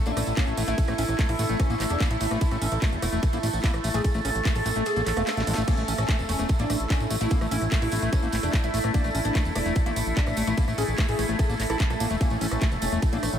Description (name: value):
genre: psychedelic trance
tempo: 147 BPM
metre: 4/4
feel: straight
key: A major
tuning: A4 = 442 Hz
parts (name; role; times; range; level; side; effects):
- overtone-sweeping drone; sustained chords; 0.0-13.4 s; A3 to A4; -31 LUFS; equal; chorus, built-in reverb, sidechain pumping
- granular cloud pad; texture; 0.0-13.4 s; A4 to A5; -36 LUFS; right 1 dB; built-in reverb, wide subtle chorus, sidechain pumping
- oud; melody; 0.1-13.3 s; C#4 to A4; -32 LUFS; right 1 dB; phaser, sidechain pumping, tape echo
- overdriven acid bass; riff; 0.1-13.3 s; G#3 to E4; -33 LUFS; moving between left 6 dB and right 2 dB; distortion, auto-pan, sidechain pumping, tape echo
- fat analog bass; bass; 0.1-13.4 s; E1 to Bb1; -28 LUFS; equal; none
- drum and bass drum kit; drums; 0.1-13.4 s; crash cymbal, handclaps, hi-hat, ride cymbal, rim click, snare drum; -34 LUFS; equal; none
- tambourine; percussion; 0.1-13.4 s; none; -38 LUFS; right 5 dB; none
- electronic kick drum; drums; 0.4-13.1 s; none; -24 LUFS; equal; none
room: moderate huge ambient reverb, RT60 9.0 s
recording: dreamy mix soaked in reverb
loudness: -22 LUFS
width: side -9 dB against mid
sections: 0.0-13.4 A section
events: kick drops out 4.9-5.7; drum fill 5.3-5.7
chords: 0.0 A5